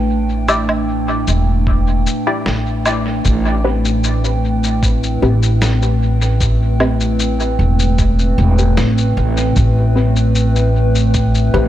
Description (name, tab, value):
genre	ambient dub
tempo	76 BPM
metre	4/4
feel	straight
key	A minor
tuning	A4 = 440 Hz
part	warbly tape-like pad	sustained chords	0.0-11.7 s	A2 to G5	-19 LUFS	equal	chorus, built-in reverb
part	upright bass	bass	0.0-11.7 s	E1 to A1	-15 LUFS	equal	none
part	filtered dub chord stab	stabs	0.5-11.7 s	C4 to D5	-22 LUFS	left 2 dB	phaser, dub echo
part	electronic shaker, woodblock and snare drum	drums	0.5-11.5 s	none	-23 LUFS	left 1 dB	studio reverb, dub echo
part	electronic kick drum	drums	1.7-11.3 s	none	-18 LUFS	equal	studio reverb
room	light reverb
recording	none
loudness	-13 LUFS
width	side -12 dB against mid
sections	0.0-3.2 A section; 3.2-11.7 B section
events	none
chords	0.0 Em7; 3.2 Am9